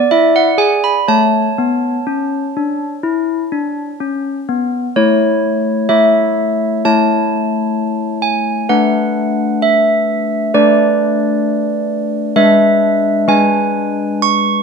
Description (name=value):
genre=classical, tune for handbells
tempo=64 BPM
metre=4/4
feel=straight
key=A major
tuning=A4 = 439 Hz
part: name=handbells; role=solo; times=0.0-14.6 s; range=G#3 to C#6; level=-12 LUFS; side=equal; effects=none
room=moderate recital hall reverb, RT60 1.5 s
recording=close, detailed microphones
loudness=-12 LUFS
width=side -5 dB against mid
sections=0.0-4.9 A section; 4.9-14.6 B section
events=none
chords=0.1 E7; 1.1 A; 8.7 Bm7/A; 12.4 E7/G#